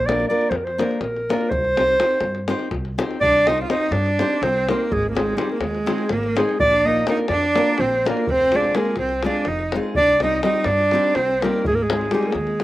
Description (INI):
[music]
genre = balkan folk, Balkan wedding band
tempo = 249 BPM (eighths)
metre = 7/8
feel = straight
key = C minor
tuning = A4 = 440 Hz
[part]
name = warm clarinet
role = melody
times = 0.0-12.6 s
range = G4 to F5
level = -20 LUFS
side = right 1 dB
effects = slapback echo
[part]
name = upright bass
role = bass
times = 0.0-12.6 s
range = F1 to G2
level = -28 LUFS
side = equal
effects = none
[part]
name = nylon-string guitar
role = accompaniment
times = 0.1-12.6 s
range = G3 to C5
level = -24 LUFS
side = left 1 dB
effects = slapback echo
[part]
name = davul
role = percussion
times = 0.1-12.6 s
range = none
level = -27 LUFS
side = left 4 dB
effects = slapback echo
[part]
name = bright cello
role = second line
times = 3.2-12.6 s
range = G3 to F4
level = -25 LUFS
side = right 3 dB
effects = slapback echo
[sound]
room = little or no reverb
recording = recorded outdoors, with no room sound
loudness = -17 LUFS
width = side -16 dB against mid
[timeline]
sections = 0.0-3.2 A section; 3.2-12.6 A section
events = none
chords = 0.0 Bb; 1.5 Cm; 4.9 Ab; 6.6 Bb; 8.3 Fm; 10.0 Cm; 11.7 Ab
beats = 0.06 0.31 0.55 0.79 1.03 1.27 | 1.52 1.76 2.00 2.24 2.48 2.73 2.97 | 3.21 3.45 3.69 3.94 4.18 4.42 4.66 | 4.90 5.14 5.39 5.63 5.87 6.11 6.35 | 6.59 6.83 7.08 7.32 7.56 7.80 8.04 | 8.28 8.52 8.76 9.00 9.24 9.49 9.73 | 9.97 10.21 10.45 10.69 10.93 11.17 11.41 | 11.65 11.89 12.13 12.37 12.61